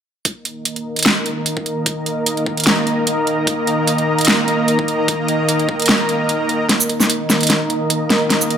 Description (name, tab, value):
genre	heavy wobble dubstep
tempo	149 BPM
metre	4/4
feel	swing 54% on 16ths, half-time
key	unclear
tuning	A4 = 440 Hz
part	supersaw pad	sustained chords	0.3-8.6 s	Eb3 to Bb5	-18 LUFS	equal	sidechain pumping, low-pass filter
part	dubstep drum kit	drums	0.3-8.6 s	hi-hat, shaker, snare drum	-16 LUFS	equal	none
part	electronic kick drum	drums	0.3-5.8 s	none	-22 LUFS	left 1 dB	high-pass filter on kick
room	moderate lush hall reverb, RT60 1.8 s, digital ambience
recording	none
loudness	-15 LUFS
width	side -8 dB against mid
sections	0.2-6.7 A section; 6.7-8.6 B section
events	filter sweep on supersaw synth 0.2-6.7; break 6.3-6.7; build-up 6.7-8.6; drum fill 6.7-8.6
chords	0.2 Eb5